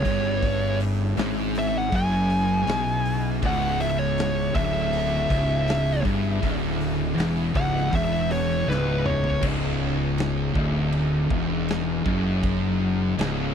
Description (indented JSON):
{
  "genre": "stoner and doom metal",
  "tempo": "80 BPM",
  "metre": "4/4",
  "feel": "straight",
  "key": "C# minor",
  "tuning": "A4 = 441 Hz",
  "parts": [
    { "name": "fuzz lead guitar", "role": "melody", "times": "0.0-9.4 s", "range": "B4 to G#5", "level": "-28 LUFS", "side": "left 1 dB", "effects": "distortion, tape echo" },
    { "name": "tonewheel organ", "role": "sustained chords", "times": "0.0-13.5 s", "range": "C#3 to G#4", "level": "-38 LUFS", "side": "right 2 dB", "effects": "slow rotary speaker" },
    { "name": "distorted electric guitar", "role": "riff", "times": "0.0-13.5 s", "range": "C#2 to B2", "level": "-32 LUFS", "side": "equal", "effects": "distortion" },
    { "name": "thick fuzz guitar", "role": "riff", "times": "0.0-13.5 s", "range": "C#2 to B2", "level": "-27 LUFS", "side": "left 10 dB", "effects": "distortion" },
    { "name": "thick fuzz guitar", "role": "riff", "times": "0.0-13.5 s", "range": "C#2 to B2", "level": "-28 LUFS", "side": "right 9 dB", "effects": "distortion" },
    { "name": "fuzz fingered electric bass", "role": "bass", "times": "0.1-13.5 s", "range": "C#1 to B1", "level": "-29 LUFS", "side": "equal", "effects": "overdrive" },
    { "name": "big rock drum kit", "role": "drums", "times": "0.1-13.4 s", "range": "crash cymbal, hi-hat, kick drum, snare drum, toms", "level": "-31 LUFS", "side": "equal", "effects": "none" }
  ],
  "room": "little or no reverb",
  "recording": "dry, close 1970s-style studio recording",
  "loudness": "-21 LUFS",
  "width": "side -8 dB against mid",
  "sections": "0.0-9.4 A section; 9.4-13.5 B section",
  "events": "lead electric guitar solo 0.0-9.4; drum fill 8.7-9.4",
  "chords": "0.0 C#m"
}